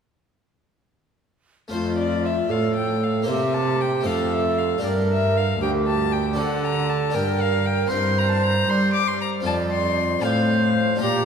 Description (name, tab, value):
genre	classical, baroque-style sonata movement with continuo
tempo	78 BPM (dotted quarters)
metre	6/8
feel	straight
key	F major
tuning	A4 = 441 Hz
part	rich violin	melody	1.7-11.2 s	C5 to D6	-26 LUFS	left 6 dB	none
part	bright baroque flute	second line	1.7-11.2 s	F4 to D5	-24 LUFS	right 4 dB	none
part	harpsichord	accompaniment	1.7-11.2 s	D2 to C5	-28 LUFS	left 3 dB	none
part	rich cello	bass	1.7-11.2 s	D2 to G3	-24 LUFS	right 1 dB	none
room	wet church reverb, RT60 3.2 s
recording	recorded in a church or concert hall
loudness	-19 LUFS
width	side -7 dB against mid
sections	1.7-11.2 A section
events	none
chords	1.7 F; 3.3 C5; 4.1 F; 4.8 Gm; 6.4 D5; 7.1 Gm; 7.9 C7/G; 9.5 F; 10.2 F/A